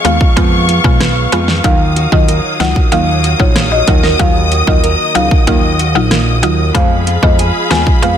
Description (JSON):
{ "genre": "dancehall", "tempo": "94 BPM", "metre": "4/4", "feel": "straight", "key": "Eb minor", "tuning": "A4 = 440 Hz", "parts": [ { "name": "buzzing marimba with medium mallets", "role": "melody", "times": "0.0-8.2 s", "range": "Bb4 to Ab5", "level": "-18 LUFS", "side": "left 1 dB", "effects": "ping-pong delay" }, { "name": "mallet-like synth pluck", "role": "accompaniment", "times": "0.0-8.2 s", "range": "Gb3 to F4", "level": "-17 LUFS", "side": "left 2 dB", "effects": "chorus" }, { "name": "clear studio string section", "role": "sustained chords", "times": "0.0-8.2 s", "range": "Gb3 to Eb6", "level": "-18 LUFS", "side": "left 3 dB", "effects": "sidechain pumping" }, { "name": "flamenco guitar", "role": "arpeggios", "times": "0.0-8.2 s", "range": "Eb3 to Bb4", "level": "-21 LUFS", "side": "right 9 dB", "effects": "none" }, { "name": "fat analog bass", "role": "bass", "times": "0.0-8.2 s", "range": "Bb1 to F2", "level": "-15 LUFS", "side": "equal", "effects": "none" }, { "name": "pop drum kit", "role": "drums", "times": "0.0-8.2 s", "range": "hi-hat, kick drum, rim click, snare drum", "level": "-13 LUFS", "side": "equal", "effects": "none" } ], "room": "light reverb, studio ambience", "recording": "dense, heavily limited modern master", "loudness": "-9 LUFS", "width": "side -9 dB against mid", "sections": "0.0-8.2 A section", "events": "none", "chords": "0.0 Fdim; 1.6 Ebmadd9; 6.8 Fdim", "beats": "0.37 1.00 | 1.64 2.28 2.92 3.56 | 4.20 4.83 5.47 6.11 | 6.75 7.39 8.03" }